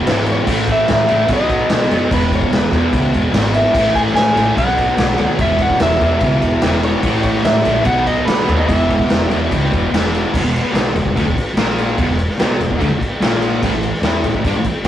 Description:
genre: garage rock duo or trio.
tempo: 146 BPM.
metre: 4/4.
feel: straight.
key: unclear.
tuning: A4 = 440 Hz.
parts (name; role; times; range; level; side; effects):
fuzz guitar; riff; 0.0-14.9 s; E2 to E4; -18 LUFS; equal; distortion.
upright bass; bass; 0.1-14.9 s; E1 to A2; -20 LUFS; equal; none.
raw garage drum kit; drums; 0.1-14.9 s; crash cymbal, kick drum, snare drum; -18 LUFS; equal; none.
electric slide guitar; melody; 0.3-9.9 s; B4 to G#5; -18 LUFS; equal; none.
room: moderate stone room reverb, RT60 1.0 s.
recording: rough rehearsal-room recording, warm saturation.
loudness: -13 LUFS.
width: side -11 dB against mid.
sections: 0.0-10.3 A section; 10.3-14.9 B section.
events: none.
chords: 0.5 A5; 1.3 B; 2.1 E; 3.7 A5; 4.6 B; 5.4 E5; 7.0 A5; 7.8 B; 8.7 E5; 11.6 A#5; 12.0 E5; 13.2 A#5; 13.6 A5.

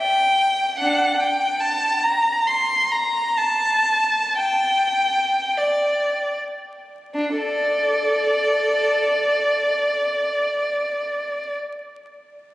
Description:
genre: classical, free, expressive piece for unaccompanied violin.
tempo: 30-77 BPM.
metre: 3/4.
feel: rubato.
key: unclear.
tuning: A4 = 440 Hz.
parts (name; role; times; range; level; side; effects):
rich violin; solo; 0.0-11.6 s; D4 to C6; -18 LUFS; equal; none.
room: wet church reverb, RT60 3.5 s.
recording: recorded on a phone in the room, club reverb, vinyl crackle.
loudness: -18 LUFS.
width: side -16 dB against mid.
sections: 0.0-7.1 A section; 7.1-10.8 B section.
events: slowing down 0.0-7.1.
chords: none.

